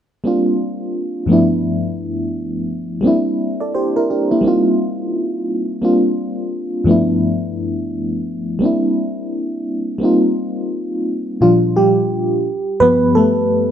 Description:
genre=R&B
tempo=86 BPM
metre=4/4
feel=swing 60% on 16ths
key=Bb major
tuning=A4 = 440 Hz
part: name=FM electric piano with tremolo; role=solo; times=0.2-13.7 s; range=G2 to D5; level=-15 LUFS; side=equal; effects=none
room=moderate stone room reverb, RT60 1.1 s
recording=band playing live in one room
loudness=-15 LUFS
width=side -9 dB against mid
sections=0.2-11.4 A section; 11.4-13.7 B section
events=FM electric piano solo 11.4-13.7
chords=0.2 Bb6; 1.3 G13; 3.0 C9; 4.4 F9sus4; 5.8 Bb6; 6.9 G13; 8.6 C9; 10.0 F9sus4; 11.4 Bb6; 12.5 G9

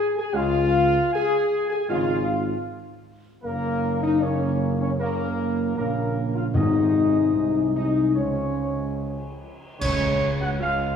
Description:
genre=classical, ceremonial fanfare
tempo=77 BPM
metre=4/4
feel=straight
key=Db major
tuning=A4 = 440 Hz
part: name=dark trumpet section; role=melody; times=0.0-11.0 s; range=Bb4 to Ab5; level=-31 LUFS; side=right 3 dB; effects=none
part: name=mellow French horn section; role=sustained chords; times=0.0-11.0 s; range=Bb3 to Ab4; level=-23 LUFS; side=left 3 dB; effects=none
part: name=warm trombone section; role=sustained chords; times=0.3-11.0 s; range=C3 to Bb3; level=-31 LUFS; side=right 3 dB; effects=none
part: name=dark tuba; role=bass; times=0.3-11.0 s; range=Gb1 to Db2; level=-27 LUFS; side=right 2 dB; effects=none
part: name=timpani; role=percussion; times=6.5-7.7 s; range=Ab2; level=-28 LUFS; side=left 1 dB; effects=none
part: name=cymbal swell, clash cymbals and concert bass drum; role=percussion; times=6.6-11.0 s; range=none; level=-32 LUFS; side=equal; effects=none
room=wet concert hall reverb, RT60 1.8 s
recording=small room ambience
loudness=-21 LUFS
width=side -7 dB against mid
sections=0.0-9.8 A section; 9.8-11.0 A section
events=band accent 9.8-10.6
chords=0.0 Db; 3.4 Gb; 6.6 Ab; 8.2 Db

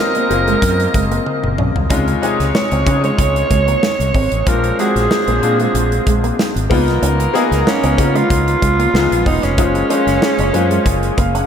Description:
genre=polished 1980s jazz-funk pop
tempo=94 BPM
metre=4/4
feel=swing 54% on 16ths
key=Db major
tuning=A4 = 440 Hz
part: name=growling alto saxophone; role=melody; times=0.0-11.5 s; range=Db4 to Db5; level=-19 LUFS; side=right 3 dB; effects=analog delay
part: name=dark horn section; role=second line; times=0.0-11.5 s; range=Db4 to Eb5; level=-25 LUFS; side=left 2 dB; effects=analog delay
part: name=bright baby grand piano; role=accompaniment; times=0.0-11.5 s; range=C3 to Gb5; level=-20 LUFS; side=left 3 dB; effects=analog chorus
part: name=modern studio drum kit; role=drums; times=0.1-11.5 s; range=hi-hat, kick drum, snare drum, toms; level=-20 LUFS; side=equal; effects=none
part: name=electric guitar with an envelope filter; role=riff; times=0.2-11.5 s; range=Ab3 to Eb4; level=-24 LUFS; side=right 3 dB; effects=lush chorus
part: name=fretless electric bass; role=bass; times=0.3-11.4 s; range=Fb1 to Db3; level=-18 LUFS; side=equal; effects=none
room=moderate cathedral reverb, RT60 5.9 s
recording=dreamy mix soaked in reverb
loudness=-13 LUFS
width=side -8 dB against mid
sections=0.0-11.5 A section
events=drum fill 1.3-1.9; grand piano fill 10.9-11.5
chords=0.0 Gbmaj9#11; 1.9 Dbmaj7; 4.5 Bb7; 6.7 Db13; 8.9 Db9; 9.6 Gbmaj9#11

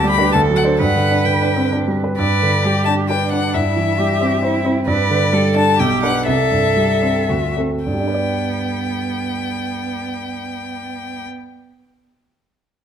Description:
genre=quick classical-period movement for piano trio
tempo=105-136 BPM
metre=3/4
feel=straight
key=G major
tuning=A4 = 440 Hz
part: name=clear violin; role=melody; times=0.0-11.2 s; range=D5 to B5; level=-21 LUFS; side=left 8 dB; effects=none
part: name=rich cello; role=second line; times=0.0-11.2 s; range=B3 to B4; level=-22 LUFS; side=right 6 dB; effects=none
part: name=clear grand piano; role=accompaniment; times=0.0-11.5 s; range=B1 to D5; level=-18 LUFS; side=right 1 dB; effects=none
room=moderate recital hall reverb, RT60 1.4 s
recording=close, detailed microphones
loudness=-15 LUFS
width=side -8 dB against mid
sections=0.0-2.2 A section; 2.2-7.8 B section; 7.8-11.2 C section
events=slowing down 4.2-7.8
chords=0.3 D7; 0.8 G; 3.5 C/G; 4.9 G; 5.8 G/B; 6.3 Am7/C; 7.3 D7; 7.8 G

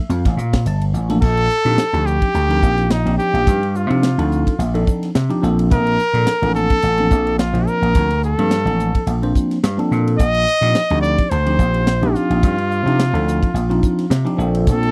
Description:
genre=electric jazz fusion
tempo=107 BPM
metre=4/4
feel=swing 55% on 16ths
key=unclear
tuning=A4 = 442 Hz
part: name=bell-like tine electric piano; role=accompaniment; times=0.0-14.9 s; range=F3 to A5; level=-23 LUFS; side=equal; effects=phaser
part: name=vintage slap bass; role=bass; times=0.1-14.9 s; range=G1 to C3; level=-21 LUFS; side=equal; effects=none
part: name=tight funk drum kit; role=drums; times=0.1-14.9 s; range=crash cymbal, hi-hat, kick drum, ride cymbal, snare drum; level=-21 LUFS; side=equal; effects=none
part: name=warm trumpet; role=melody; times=1.2-14.9 s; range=Eb4 to Eb5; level=-22 LUFS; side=equal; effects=slapback echo
room=little or no reverb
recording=dry, close 1970s-style studio recording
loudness=-17 LUFS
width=mono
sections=0.0-1.2 A section; 1.2-14.9 B section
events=none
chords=0.0 Bbmaj7(no3); 1.2 Ebmaj13/Bb; 5.4 Bbmaj9; 10.2 Ebmaj13/Bb; 14.4 Bbmaj9

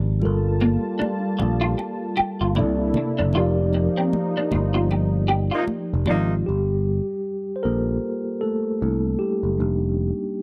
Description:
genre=R&B, neo-soul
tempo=77 BPM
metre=4/4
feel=swing 57% on 16ths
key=G minor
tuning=A4 = 439 Hz
part: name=mellow tine electric piano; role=accompaniment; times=0.0-10.4 s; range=C3 to D5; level=-27 LUFS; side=equal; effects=none
part: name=picked electric bass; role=bass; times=0.0-10.1 s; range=F1 to C2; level=-24 LUFS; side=equal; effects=none
part: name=warm analog pad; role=sustained chords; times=0.2-6.4 s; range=C3 to A5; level=-32 LUFS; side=equal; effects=chorus
part: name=congas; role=percussion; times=0.2-6.3 s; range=none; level=-32 LUFS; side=equal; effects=none
part: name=clean electric guitar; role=second line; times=0.6-6.2 s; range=Bb3 to G4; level=-27 LUFS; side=equal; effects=ensemble chorus
part: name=warm horn section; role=stabs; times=5.5-6.3 s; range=C3 to Eb4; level=-28 LUFS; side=equal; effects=none
room=small room ambience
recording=dry, close 1970s-style studio recording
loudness=-23 LUFS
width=mono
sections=0.0-6.5 A section; 6.5-10.4 B section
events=band accent 3.3-6.5; tine electric piano solo 6.5-10.4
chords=0.2 Gm9; 2.6 C13; 3.3 F13sus4; 6.5 Gm9; 8.8 C13; 9.6 F13sus4

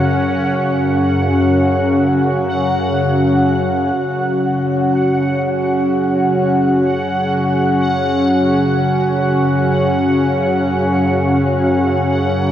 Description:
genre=dark ambient drone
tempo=free time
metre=none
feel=none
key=unclear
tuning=A4 = 440 Hz
part: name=sweeping resonant pad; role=sustained chords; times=0.0-12.5 s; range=C#3 to F#4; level=-15 LUFS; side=equal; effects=chorus, shimmer reverb
part: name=organ-like drone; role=drone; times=0.0-12.5 s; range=F#2 to C#3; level=-20 LUFS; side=equal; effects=ensemble chorus, built-in reverb
part: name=bubbling stepped-filter texture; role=texture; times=0.0-12.5 s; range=F#5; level=-22 LUFS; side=right 1 dB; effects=chorus, built-in reverb, shimmer reverb
room=wet huge ambient reverb, RT60 8.5 s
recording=worn, warbling old tape, cassette tape, warbly pitch drift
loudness=-13 LUFS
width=side -11 dB against mid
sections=0.0-4.0 A section; 4.0-12.5 B section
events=fade-in on synth drone 4.0-12.5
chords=0.0 F#5

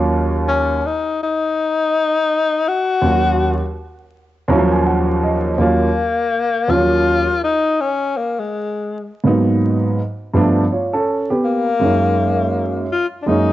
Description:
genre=hip hop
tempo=82 BPM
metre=4/4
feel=swing 60% on 16ths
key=Eb minor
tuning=A4 = 442 Hz
part: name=dark baby grand piano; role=accompaniment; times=0.0-13.5 s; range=Eb2 to Bb5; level=-16 LUFS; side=right 1 dB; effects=cassette tape
part: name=breathy tenor saxophone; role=melody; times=0.5-13.5 s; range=Ab3 to Gb4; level=-17 LUFS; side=left 4 dB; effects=cassette tape
room=light reverb, small room ambience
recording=home recording on cassette, vinyl crackle, nothing above 7.9 kHz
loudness=-15 LUFS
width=side -14 dB against mid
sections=0.0-5.6 A section; 5.6-13.5 B section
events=grand piano fill 4.1-5.6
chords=0.0 Ebm9; 8.5 Abm7; 10.0 G9; 11.4 Gb6

